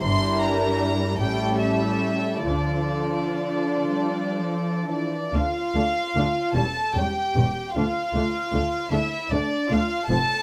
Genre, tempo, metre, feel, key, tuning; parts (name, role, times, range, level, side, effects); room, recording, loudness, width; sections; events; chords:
classical, slow romantic movement for string orchestra; 40-52 BPM (dotted quarters); 6/8; rubato; D minor; A4 = 435 Hz
warm symphonic violin section; melody; 0.0-10.4 s; D5 to C6; -30 LUFS; equal
warm symphonic violin section; second line; 0.0-10.4 s; D4 to Bb4; -32 LUFS; equal
dark symphonic viola section; accompaniment; 0.0-10.2 s; F3 to D4; -29 LUFS; equal
warm symphonic cello section; bass; 0.0-10.2 s; D2 to G3; -31 LUFS; equal
warm symphonic double bass section; bass; 0.0-10.2 s; E1 to D2; -30 LUFS; equal
moderate studio reverb, RT60 0.8 s; -24 LUFS; mono
0.0-5.3 A section; 5.3-10.4 B section
0.0 Em7b5/G; 1.2 A7; 2.5 Dm; 6.6 C#dim; 7.8 Dm